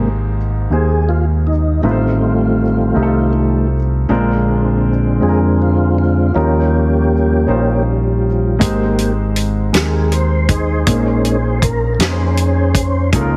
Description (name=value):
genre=slow gospel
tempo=53 BPM (dotted quarters)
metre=6/8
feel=straight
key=Ab major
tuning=A4 = 440 Hz
part: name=warm upright piano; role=accompaniment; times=0.0-13.4 s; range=Ab2 to C5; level=-23 LUFS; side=equal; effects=none
part: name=tonewheel organ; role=sustained chords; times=0.0-13.4 s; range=D3 to C5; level=-20 LUFS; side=equal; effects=slow rotary speaker, chorus vibrato
part: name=fingered electric bass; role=bass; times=0.0-13.4 s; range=Ab1 to F2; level=-18 LUFS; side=equal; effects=none
part: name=warm soul drum kit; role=drums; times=8.6-13.3 s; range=hi-hat, kick drum, snare drum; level=-20 LUFS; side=equal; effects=none
room=light reverb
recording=heavily compressed radio sound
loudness=-15 LUFS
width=mono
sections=0.0-13.4 A section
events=tonewheel organ solo 0.0-13.4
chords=0.0 Abmaj9; 1.8 F7/A; 4.1 Bb9; 6.4 Eb9; 8.6 Abmaj7; 10.9 Bbm11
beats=0.71 | 1.83 2.96 | 4.09 5.22 | 6.36 7.49 | 8.62 9.74 | 10.87 12.00 | 13.13